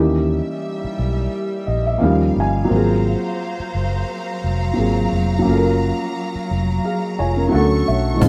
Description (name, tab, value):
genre	lo-fi hip hop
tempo	87 BPM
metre	4/4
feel	swing 55% on 16ths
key	unclear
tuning	A4 = 438 Hz
part	felt-muted upright piano	accompaniment	0.0-8.3 s	Fb3 to Ab5	-22 LUFS	equal	cassette tape
part	warm studio string section	sustained chords	0.0-8.3 s	Gb3 to C#6	-28 LUFS	equal	none
part	vintage muted fingered electric bass	bass	0.0-8.3 s	F1 to Eb2	-23 LUFS	equal	none
part	cajon	drums	8.2-8.3 s	none	-17 LUFS	equal	none
room	light reverb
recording	rough home demo mix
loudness	-19 LUFS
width	mono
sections	0.0-8.3 A section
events	none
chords	0.0 Eb7b9; 2.0 Eb9; 2.7 Ab13; 5.5 Gbmaj7; 7.5 Dmaj7